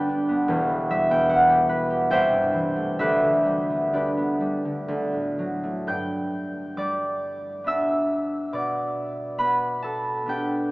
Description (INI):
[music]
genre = classical, solo harp piece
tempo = 58-75 BPM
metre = 3/4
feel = rubato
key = G major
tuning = A4 = 437 Hz
[part]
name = concert harp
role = solo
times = 0.0-10.7 s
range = E1 to G6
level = -21 LUFS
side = equal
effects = none
[sound]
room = wet cathedral reverb, RT60 5.5 s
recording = small speaker sound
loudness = -21 LUFS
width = side -21 dB against mid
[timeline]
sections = 0.0-5.9 A section; 5.9-10.7 B section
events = none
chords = 0.5 Em; 2.1 Am7/C; 3.0 G/D; 4.9 D; 5.9 G; 8.5 G/B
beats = | 0.49 1.29 2.11 | 3.01 3.94 4.88 | 5.87 6.77 7.66 | 8.53 9.39 10.27